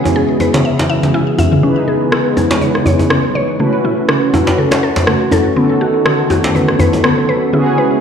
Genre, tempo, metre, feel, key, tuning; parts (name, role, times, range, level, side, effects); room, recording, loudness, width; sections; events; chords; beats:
afro house; 122 BPM; 4/4; swing 56% on 16ths; C# minor; A4 = 441 Hz
warm analog pad; sustained chords; 0.0-8.0 s; C#3 to F#4; -18 LUFS; left 2 dB; chorus
mellow synth brass; stabs; 0.0-8.0 s; E3 to B4; -17 LUFS; right 2 dB; chorus, ping-pong delay
djembe; percussion; 0.1-7.0 s; -16 LUFS; equal
mallet-like synth pluck; arpeggios; 0.2-7.9 s; A3 to E5; -19 LUFS; left 1 dB; chorus, ping-pong delay
afro-pop drum kit; drums; 0.5-7.6 s; rim click, toms; -18 LUFS; equal; overdrive
warm 808-style bass; bass; 1.6-7.9 s; E1 to A2; -25 LUFS; left 1 dB
moderate scoring stage reverb, RT60 1.7 s, digital ambience; played on a big sound system in a bare room, large studio reverb; -11 LUFS; side -7 dB against mid
0.0-1.6 A section; 1.6-8.0 B section
filter sweep on analog polysynth 0.0-1.6; build-up 1.6-8.0; drum fill 1.6-8.0
0.0 E6; 1.6 C#m7; 3.6 A6; 5.6 B7
0.16 0.65 1.14 | 1.63 2.12 2.62 3.11 | 3.60 4.09 4.58 5.08 | 5.57 6.06 6.55 7.04 | 7.53